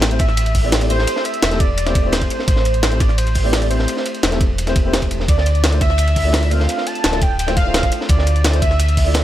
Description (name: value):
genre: liquid drum and bass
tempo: 171 BPM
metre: 4/4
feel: straight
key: D minor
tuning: A4 = 439 Hz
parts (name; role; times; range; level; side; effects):
- dark baby grand piano; accompaniment; 0.0-9.2 s; A3 to D5; -24 LUFS; left 2 dB; ping-pong delay
- sub bass with octave; bass; 0.0-9.2 s; D1 to D2; -18 LUFS; equal; none
- crunchy breakbeat drum kit; drums; 0.0-9.2 s; hi-hat, ride cymbal, snare drum; -25 LUFS; equal; high-pass filter on cymbals, high-pass filter on hats, high-pass filter on snare, high-pass filter on room
- jungle sampler-style drum kit; drums; 0.0-9.2 s; hi-hat, snare drum; -22 LUFS; equal; none
- warm velvety synth lead; melody; 0.2-9.2 s; C5 to A5; -23 LUFS; right 1 dB; chorus, dub echo
- electronic kick drum; drums; 0.2-9.0 s; none; -18 LUFS; equal; none
room: small room ambience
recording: none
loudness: -14 LUFS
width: side -13 dB against mid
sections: 0.0-9.2 A section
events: none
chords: 0.0 Am7; 5.3 Dm9